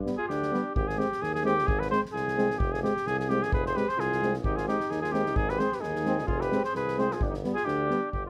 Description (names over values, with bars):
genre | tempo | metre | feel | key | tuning
balkan folk, Balkan brass band | 130 BPM | 2/4 | swing 54% on 16ths | unclear | A4 = 441 Hz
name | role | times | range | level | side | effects
dark euphonium | accompaniment | 0.0-8.0 s | G3 to Ab3 | -35 LUFS | equal | none
warm tuba | bass | 0.0-8.3 s | F1 to Eb2 | -36 LUFS | equal | none
clear French horn | accompaniment | 0.1-8.0 s | B3 to C4 | -37 LUFS | equal | none
soft-mallet drum kit | percussion | 0.1-8.2 s | kick drum, snare drum | -38 LUFS | equal | none
clear flugelhorn | melody | 0.2-8.3 s | F4 to C5 | -32 LUFS | equal | none
mellow alto saxophone | second line | 0.2-0.7, 3.5-8.1 s | D4 to Ab4 | -38 LUFS | equal | none
room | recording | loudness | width
moderate small room reverb, RT60 0.5 s | none | -28 LUFS | mono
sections
0.7-8.1 A section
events
none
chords
0.0 G; 0.7 Ab; 2.6 Fm; 4.4 Ab; 6.3 Fm; 7.2 G